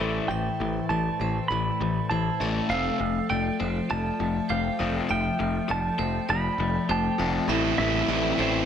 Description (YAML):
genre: post-rock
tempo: 100 BPM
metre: 4/4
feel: straight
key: A minor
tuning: A4 = 440 Hz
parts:
  - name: clean lap steel guitar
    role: melody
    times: 0.0-8.7 s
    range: E5 to B5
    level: -30 LUFS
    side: right 4 dB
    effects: tape echo
  - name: glassy FM pad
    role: sustained chords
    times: 0.0-8.7 s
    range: F3 to A5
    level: -38 LUFS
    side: right 2 dB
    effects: ensemble chorus, built-in reverb, phaser
  - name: clean electric guitar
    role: arpeggios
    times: 0.0-8.7 s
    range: A2 to G4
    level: -35 LUFS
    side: right 2 dB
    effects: tape echo
  - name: vibraphone with hard mallets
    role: arpeggios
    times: 0.0-8.7 s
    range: C5 to E6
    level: -37 LUFS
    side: right 6 dB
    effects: tape echo
  - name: overdriven electric guitar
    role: riff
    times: 0.0-8.7 s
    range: A2 to E4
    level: -28 LUFS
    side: left 6 dB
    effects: phaser
  - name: modern bright picked electric bass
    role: bass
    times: 0.0-8.6 s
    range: F1 to A1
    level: -30 LUFS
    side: equal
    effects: none
  - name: sludgy distorted guitar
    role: riff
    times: 7.5-8.7 s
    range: A2 to E4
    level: -27 LUFS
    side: right 12 dB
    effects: overdrive
room: moderate large studio reverb, RT60 0.9 s, digital ambience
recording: none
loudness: -23 LUFS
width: side -8 dB against mid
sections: 0.0-7.5 A section; 7.5-8.7 B section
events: build-up 0.0-7.5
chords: 0.0 Am; 2.7 Fadd9; 7.5 Am